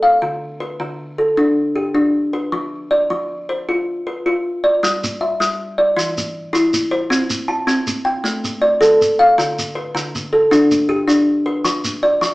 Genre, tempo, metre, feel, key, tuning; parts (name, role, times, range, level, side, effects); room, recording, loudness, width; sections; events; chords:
southern african traditional, mbira-style interlocking cycle; 105 BPM (dotted quarters); 12/8; straight; A4 = 440 Hz
kalimba; arpeggios; 0.0-12.3 s; D3 to A5; -15 LUFS; equal
shekere; percussion; 4.8-12.3 s; -24 LUFS; right 1 dB
wet studio reverb, RT60 0.7 s; band playing live in one room, small speaker sound; -15 LUFS; side -20 dB against mid
0.0-4.8 A section; 4.8-12.3 B section
0.2 D5; 2.5 F5; 4.8 G5; 6.0 Cadd9/E; 7.1 C5; 8.2 A7sus4; 9.4 D5; 11.7 F5